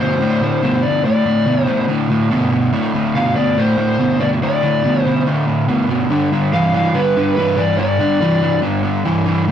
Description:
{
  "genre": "rock",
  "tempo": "143 BPM",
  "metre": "4/4",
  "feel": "straight",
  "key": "unclear",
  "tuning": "A4 = 441 Hz",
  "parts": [
    { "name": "lead guitar through a small cranked amp", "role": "melody", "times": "0.0-8.6 s", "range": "B4 to F5", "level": "-18 LUFS", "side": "left 1 dB", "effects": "overdrive" },
    { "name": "crunchy overdriven guitar", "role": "riff", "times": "0.0-9.5 s", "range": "D2 to E3", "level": "-15 LUFS", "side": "equal", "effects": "none" }
  ],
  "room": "wet booth ambience, RT60 0.3 s",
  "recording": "rough rehearsal-room recording, warm saturation",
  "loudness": "-14 LUFS",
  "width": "side -9 dB against mid",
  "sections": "0.0-9.5 A section",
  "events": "none",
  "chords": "0.0 D5; 6.1 G5",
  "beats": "0.22 0.64 | 1.06 1.48 1.90 2.32 | 2.74 3.16 3.58 4.00 | 4.42 4.84 5.26 5.68 | 6.11 6.53 6.95 7.37 | 7.79 8.21 8.63 9.05 | 9.47"
}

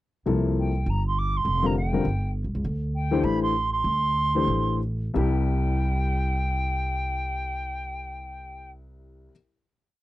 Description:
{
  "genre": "modal jazz",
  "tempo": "173-203 BPM",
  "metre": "4/4",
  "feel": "swing 61% on 8ths",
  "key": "C mixolydian",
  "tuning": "A4 = 439 Hz",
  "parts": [
    { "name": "warm baby grand piano", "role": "accompaniment", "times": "0.3-9.3 s", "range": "C2 to C5", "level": "-27 LUFS", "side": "left 4 dB", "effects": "none" },
    { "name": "upright bass", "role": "bass", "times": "0.3-9.3 s", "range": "F1 to D2", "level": "-27 LUFS", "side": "right 1 dB", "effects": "none" },
    { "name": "silver concert flute", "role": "melody", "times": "0.6-8.7 s", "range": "G5 to D6", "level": "-28 LUFS", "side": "right 2 dB", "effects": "none" }
  ],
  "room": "little or no reverb",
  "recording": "dry, close 1970s-style studio recording",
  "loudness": "-23 LUFS",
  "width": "side -16 dB against mid",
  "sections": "0.3-5.2 A section; 5.2-7.9 final chord",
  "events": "slowing down 2.6-5.2",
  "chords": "0.3 C7sus4; 2.6 D9sus4; 5.2 C",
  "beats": "| 0.27 0.56 0.86 1.16 | 1.45 1.75 2.04 2.34 | 2.64 2.93 3.23 3.53 | 3.84 4.16 4.48 4.81 | 5.15 5.50 5.85 6.19 | 6.54 6.89 7.24 7.58"
}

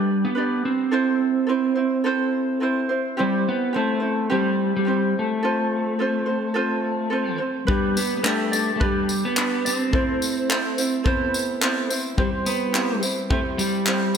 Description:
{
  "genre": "acoustic pop",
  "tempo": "106 BPM",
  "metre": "4/4",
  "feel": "swing 55% on 16ths",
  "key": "unclear",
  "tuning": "A4 = 440 Hz",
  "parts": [
    { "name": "electric slide guitar", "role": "melody", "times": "0.0-14.2 s", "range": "G3 to C4", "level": "-23 LUFS", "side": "right 1 dB", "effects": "tape echo" },
    { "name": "ukulele", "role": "accompaniment", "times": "0.0-14.2 s", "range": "C4 to D5", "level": "-25 LUFS", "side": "right 2 dB", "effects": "slapback echo" },
    { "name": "reed electric piano", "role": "accompaniment", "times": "7.7-14.2 s", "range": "G3 to C6", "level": "-32 LUFS", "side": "left 5 dB", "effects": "tremolo, slapback echo" },
    { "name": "modern studio drum kit", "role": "drums", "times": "7.7-14.2 s", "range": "handclaps, kick drum, tambourine", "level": "-25 LUFS", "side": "left 1 dB", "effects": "none" }
  ],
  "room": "moderate lush hall reverb, RT60 1.9 s, studio reverb",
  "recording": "big arena sound",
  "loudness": "-20 LUFS",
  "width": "side -7 dB against mid",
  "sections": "0.0-14.2 A section",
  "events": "none",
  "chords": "0.0 G; 0.9 Am; 3.2 C; 5.4 F; 7.7 G; 9.9 Am; 12.2 C",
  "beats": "0.36 | 0.92 1.48 2.05 2.61 | 3.17 3.74 4.30 4.86 | 5.43 5.99 6.55 7.12 | 7.68 8.24 8.81 9.37 | 9.93 10.49 11.06 11.62 | 12.18 12.75 13.31 13.87"
}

